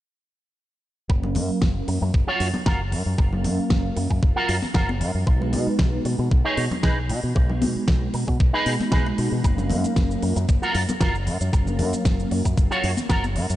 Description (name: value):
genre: nu-disco, nu disco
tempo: 115 BPM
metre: 4/4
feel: swing 53% on 16ths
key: F# major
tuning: A4 = 441 Hz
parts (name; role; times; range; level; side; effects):
- warm analog pad; accompaniment; 1.1-12.4 s; F#3 to E#5; -28 LUFS; right 1 dB; chorus, diffuse ambient delay
- electric guitar with an envelope filter; riff; 1.1-13.4 s; D#4 to C#5; -28 LUFS; right 1 dB; ensemble chorus, diffuse ambient delay
- fingered electric bass with an envelope filter; bass; 1.1-13.6 s; F#1 to B2; -25 LUFS; equal; none
- electronic kick drum; drums; 1.1-13.2 s; none; -20 LUFS; equal; small room reverb
- congas; percussion; 1.2-13.3 s; none; -30 LUFS; left 2 dB; none
- pop drum kit; drums; 1.4-13.6 s; cabasa, hi-hat, snare drum; -30 LUFS; equal; small room reverb
room: light reverb, digital ambience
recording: nothing above 10.4 kHz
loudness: -20 LUFS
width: side -14 dB against mid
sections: 1.1-13.6 A section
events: none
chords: 1.1 F#maj7; 5.3 B6; 9.4 F#maj7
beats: | 1.10 1.62 2.14 2.66 | 3.19 3.71 4.23 4.75 | 5.27 5.79 6.32 6.84 | 7.36 7.88 8.40 8.92 | 9.45 9.97 10.49 11.01 | 11.53 12.05 12.58 13.10